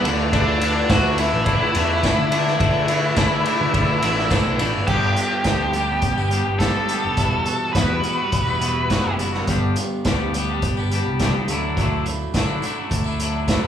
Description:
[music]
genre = indie rock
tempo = 105 BPM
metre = 4/4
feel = straight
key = G major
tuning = A4 = 440 Hz
[part]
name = electric guitar through a small old amp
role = riff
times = 0.0-13.7 s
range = E2 to G4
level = -27 LUFS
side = right 4 dB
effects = none
[part]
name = twangy electric guitar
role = riff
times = 0.0-13.7 s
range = E2 to G4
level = -25 LUFS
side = left 5 dB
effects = none
[part]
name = fingered electric bass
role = bass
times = 0.0-13.7 s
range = E1 to D3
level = -24 LUFS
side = equal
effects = none
[part]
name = vintage drum kit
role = drums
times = 0.1-13.6 s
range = crash cymbal, hi-hat, kick drum, ride cymbal, snare drum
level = -23 LUFS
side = equal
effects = none
[part]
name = octave-fuzz lead guitar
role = melody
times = 0.3-9.1 s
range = D4 to B4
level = -23 LUFS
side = equal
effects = distortion
[part]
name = tambourine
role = percussion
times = 0.9-13.7 s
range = none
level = -39 LUFS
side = right 6 dB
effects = none
[sound]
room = moderate large studio reverb, RT60 0.9 s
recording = band playing live in one room, small room ambience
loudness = -18 LUFS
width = side -9 dB against mid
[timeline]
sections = 0.0-4.9 A section; 4.9-13.7 B section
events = none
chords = 0.0 Dsus2; 4.9 G; 7.2 Emadd9; 9.5 G; 11.5 Dadd9

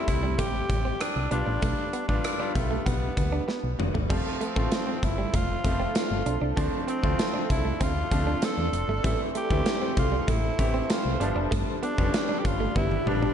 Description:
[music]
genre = 1980s-style pop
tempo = 97 BPM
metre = 4/4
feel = straight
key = unclear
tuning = A4 = 440 Hz
[part]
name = raspy tenor saxophone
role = melody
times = 0.0-13.3 s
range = A3 to A4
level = -32 LUFS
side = equal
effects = digital delay
[part]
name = bright baby grand piano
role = accompaniment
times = 0.0-13.3 s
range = E3 to G4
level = -32 LUFS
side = left 1 dB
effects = none
[part]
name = direct-recorded clean electric guitar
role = riff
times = 0.1-13.3 s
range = G3 to D4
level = -35 LUFS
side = right 4 dB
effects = lush chorus, digital delay
[part]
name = solid FM bass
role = bass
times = 0.1-13.3 s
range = F1 to E2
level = -29 LUFS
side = equal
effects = none
[part]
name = gated 80s drum kit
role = drums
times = 0.1-13.3 s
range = crash cymbal, hi-hat, kick drum, rim click, snare drum, toms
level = -28 LUFS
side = equal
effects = none
[part]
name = granular cloud pad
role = sustained chords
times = 5.3-13.3 s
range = G4 to C6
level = -35 LUFS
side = right 2 dB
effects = built-in reverb
[sound]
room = light reverb, small room ambience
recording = dark, warm production, nothing above 11.0 kHz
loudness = -24 LUFS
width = side -8 dB against mid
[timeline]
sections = 0.0-4.1 A section; 4.1-13.3 B section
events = drum fill 3.5-4.1, 12.8-13.3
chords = 0.0 Am7; 1.3 G7; 4.1 F; 6.6 Dm7; 9.0 Am; 11.2 G7

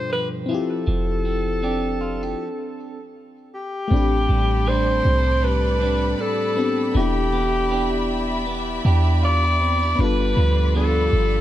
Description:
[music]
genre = R&B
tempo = 79 BPM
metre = 4/4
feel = swing 58% on 16ths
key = A minor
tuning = A4 = 438 Hz
[part]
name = warm alto saxophone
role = melody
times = 0.0-11.4 s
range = G4 to D5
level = -24 LUFS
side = left 1 dB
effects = none
[part]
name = FM electric piano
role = accompaniment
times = 0.0-11.4 s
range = B2 to A4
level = -27 LUFS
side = left 5 dB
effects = chorus
[part]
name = clean electric guitar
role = arpeggios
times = 0.0-11.4 s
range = G2 to G4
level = -28 LUFS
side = right 4 dB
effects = none
[part]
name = clean 808-style bass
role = bass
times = 0.9-11.4 s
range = E1 to E2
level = -21 LUFS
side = right 1 dB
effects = none
[part]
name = rich studio string section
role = sustained chords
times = 3.9-11.4 s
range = F4 to B5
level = -30 LUFS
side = left 2 dB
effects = none
[sound]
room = light reverb, small room ambience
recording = none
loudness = -18 LUFS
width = side -12 dB against mid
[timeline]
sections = 0.0-3.9 A section; 3.9-11.4 B section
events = stop 2.4-3.9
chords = 0.5 Dm11/F; 3.9 Am11; 6.9 Em7; 10.0 G7

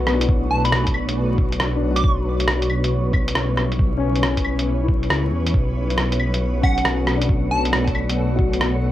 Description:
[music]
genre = future garage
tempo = 137 BPM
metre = 4/4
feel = swing 66% on 16ths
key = B minor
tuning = A4 = 441 Hz
[part]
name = dark upright piano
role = accompaniment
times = 0.0-8.9 s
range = A3 to F#4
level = -27 LUFS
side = left 6 dB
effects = vintage 12-bit sampler grit, sidechain pumping, analog delay
[part]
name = granular cloud pad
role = sustained chords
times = 0.0-8.9 s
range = G3 to B4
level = -26 LUFS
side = equal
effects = built-in reverb, vintage 12-bit sampler grit, sidechain pumping
[part]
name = dark detuned saw bass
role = bass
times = 0.0-8.9 s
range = B1 to E2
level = -22 LUFS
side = equal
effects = sidechain pumping
[part]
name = wind-like tuned noise texture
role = texture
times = 0.0-8.9 s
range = C#5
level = -34 LUFS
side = right 3 dB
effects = built-in reverb
[part]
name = lo-fi sampler-style drum kit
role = drums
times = 0.1-8.7 s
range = claves, hi-hat, rim click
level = -23 LUFS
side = right 1 dB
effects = cassette tape
[part]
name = electronic kick drum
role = drums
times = 0.3-8.5 s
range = none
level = -20 LUFS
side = equal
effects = cassette tape
[part]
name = plucky unison lead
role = melody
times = 0.5-2.1, 6.6-7.6 s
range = F#5 to D6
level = -26 LUFS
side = right 1 dB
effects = phaser, cassette tape, analog delay
[sound]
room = light reverb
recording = home recording on cassette, vinyl crackle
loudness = -17 LUFS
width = side -13 dB against mid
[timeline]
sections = 0.0-8.9 A section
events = none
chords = 0.0 Bm7; 2.0 C#m7b5/B; 5.5 Bm7

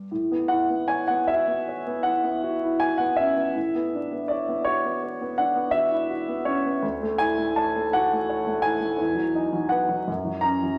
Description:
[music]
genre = classical, impressionist solo piano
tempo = 50-57 BPM (dotted quarters)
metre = 9/8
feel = rubato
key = A major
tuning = A4 = 440 Hz
[part]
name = clear grand piano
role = solo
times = 0.0-10.8 s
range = D2 to A#5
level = -24 LUFS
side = equal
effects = none
[sound]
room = wet recital hall reverb, RT60 1.6 s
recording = vinyl crackle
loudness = -25 LUFS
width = mono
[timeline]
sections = 0.1-10.8 A section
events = none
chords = 0.1 A69; 3.6 Bm11/A; 6.8 Dmaj9; 9.0 Emaj9; 10.1 F#

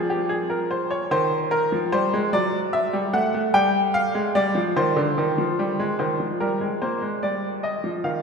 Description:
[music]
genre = classical, baroque-style two-part invention for grand piano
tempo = 49 BPM (dotted quarters)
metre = 6/8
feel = straight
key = unclear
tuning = A4 = 441 Hz
[part]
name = bright baby grand piano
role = solo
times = 0.0-8.2 s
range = D3 to G5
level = -20 LUFS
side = equal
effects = none
[sound]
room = wet cathedral reverb, RT60 4.5 s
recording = recorded in a church or concert hall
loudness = -20 LUFS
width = side -5 dB against mid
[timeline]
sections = 0.0-6.0 A section; 6.0-8.2 B section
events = none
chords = 0.0 Fm; 1.1 Cm/Eb; 2.3 D/F#; 3.5 G5; 4.8 Cm; 6.0 Cm/Eb; 7.2 G5

